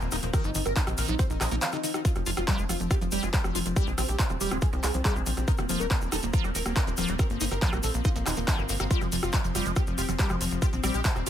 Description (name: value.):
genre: psychedelic trance.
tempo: 140 BPM.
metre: 4/4.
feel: straight.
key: F minor.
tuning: A4 = 440 Hz.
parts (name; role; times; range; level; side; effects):
wide unison lead; melody; 0.0-11.3 s; F3 to F5; -34 LUFS; equal; phaser, vintage 12-bit sampler grit, sidechain pumping, ping-pong delay.
evolving wavetable pad; sustained chords; 0.0-11.3 s; F3 to C4; -38 LUFS; left 3 dB; chorus, built-in reverb, vintage 12-bit sampler grit, sidechain pumping.
tight sequencer bass; bass; 0.0-11.3 s; Eb1 to C2; -31 LUFS; equal; none.
tube shaker; percussion; 0.0-11.3 s; none; -38 LUFS; left 3 dB; none.
liquid acid bass; riff; 0.1-11.3 s; D3 to F4; -34 LUFS; moving between left 5 dB and right 5 dB; phaser, auto-pan, vintage 12-bit sampler grit, sidechain pumping, ping-pong delay.
big-room dance drum kit; drums; 0.1-11.3 s; handclaps, hi-hat, rim click; -32 LUFS; equal; none.
electronic kick drum; drums; 0.3-11.1 s; none; -26 LUFS; equal; none.
resonant blip pluck; second line; 4.0-4.9, 10.8-11.0 s; Ab3 to C4; -42 LUFS; right 4 dB; none.
room: little or no reverb.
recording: none.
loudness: -24 LUFS.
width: side -10 dB against mid.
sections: 0.0-11.3 A section.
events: none.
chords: 0.0 Eb5; 2.0 F5; 5.5 Eb5; 8.9 F5.